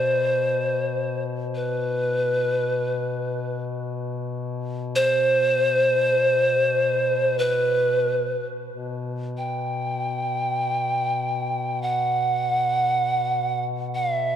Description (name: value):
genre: caucasian folk, Caucasian lament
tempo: free time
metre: none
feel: none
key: unclear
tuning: A4 = 441 Hz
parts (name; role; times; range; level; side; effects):
- breathy bright pan flute; melody; 0.0-14.4 s; B4 to G5; -22 LUFS; right 1 dB; none
- warm duduk; drone; 0.0-14.4 s; B2; -30 LUFS; left 4 dB; none
room: wet cathedral reverb, RT60 4.4 s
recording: dark, warm production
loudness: -21 LUFS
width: side -9 dB against mid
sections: 0.0-8.7 A section; 8.7-14.4 A section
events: none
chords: none